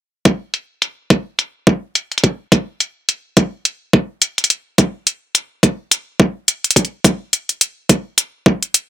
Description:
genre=glitch hop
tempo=106 BPM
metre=4/4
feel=swing 58% on 16ths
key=none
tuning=none
part: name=electronic hi-hat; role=drums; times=0.3-8.9 s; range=none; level=-13 LUFS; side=left 1 dB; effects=overdrive, low-pass filter on hats, low-pass filter on room
part: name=electronic kick drum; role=drums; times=0.3-8.6 s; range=none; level=-11 LUFS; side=equal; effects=overdrive, high-pass filter on kick, high-pass filter on room
room=little or no reverb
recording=none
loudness=-15 LUFS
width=side -12 dB against mid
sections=0.3-8.9 A section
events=none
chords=none

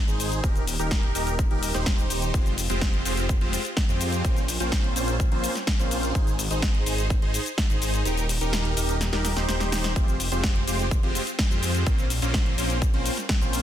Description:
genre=EDM, festival progressive house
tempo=126 BPM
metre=4/4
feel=straight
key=F minor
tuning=A4 = 441 Hz
part: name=supersaw chords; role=riff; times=0.1-13.6 s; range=Ab3 to C5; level=-28 LUFS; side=equal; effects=sidechain pumping, digital delay
part: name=wide detuned saw bass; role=bass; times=0.1-13.6 s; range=Eb1 to F2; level=-28 LUFS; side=equal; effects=chorus, sidechain pumping
part: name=big-room dance drum kit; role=drums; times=0.1-13.6 s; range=cabasa, hi-hat, snare drum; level=-29 LUFS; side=left 2 dB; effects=studio reverb
part: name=electronic kick drum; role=drums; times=0.4-13.4 s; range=none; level=-23 LUFS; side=equal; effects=studio reverb
room=little or no reverb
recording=dense, heavily limited modern master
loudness=-22 LUFS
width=side -11 dB against mid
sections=0.0-13.6 A section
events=kick drops out 8.1-10.0; drum fill 9.0-10.0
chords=0.4 Eb; 2.3 Fmadd9; 4.2 Bbmadd9; 6.2 Ab; 8.1 Eb; 10.0 Fmadd9; 11.9 Bbmadd9

